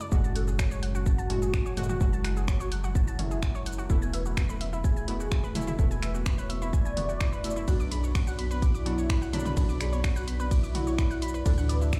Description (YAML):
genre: melodic techno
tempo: 127 BPM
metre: 4/4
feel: straight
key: F# minor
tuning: A4 = 440 Hz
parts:
  - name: mellow synth brass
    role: melody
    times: 0.0-12.0 s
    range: F#3 to D5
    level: -39 LUFS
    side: equal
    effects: chorus, sidechain pumping, digital delay
  - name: dark analog pad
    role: sustained chords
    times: 0.0-12.0 s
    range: G#3 to C#6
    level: -44 LUFS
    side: equal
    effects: chorus, sidechain pumping
  - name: analog pluck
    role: arpeggios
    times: 0.0-12.0 s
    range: A3 to D6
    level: -42 LUFS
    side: equal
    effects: chorus, sidechain pumping, dub echo
  - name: analog drone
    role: drone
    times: 0.0-12.0 s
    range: F#2 to C#3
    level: -46 LUFS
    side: equal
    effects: none
  - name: punchy analog drum machine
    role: drums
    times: 0.0-12.0 s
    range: finger snaps, hi-hat, ride cymbal, shaker, toms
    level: -39 LUFS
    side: equal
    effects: none
  - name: synth brass stab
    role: stabs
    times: 0.1-12.0 s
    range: A2 to F#4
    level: -39 LUFS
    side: equal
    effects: chorus, sidechain pumping, dub echo
  - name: tight sequencer bass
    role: bass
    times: 0.1-12.0 s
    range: E1 to D2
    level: -34 LUFS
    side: equal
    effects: sidechain pumping
  - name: electronic kick drum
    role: drums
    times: 0.1-12.0 s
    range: none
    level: -28 LUFS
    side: equal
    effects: none
room: digital ambience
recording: played on a big sound system in a bare room, large studio reverb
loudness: -28 LUFS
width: mono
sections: 0.0-12.0 A section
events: none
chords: 0.1 F#madd9; 3.9 Esus4; 7.7 Bm; 11.5 Dsus2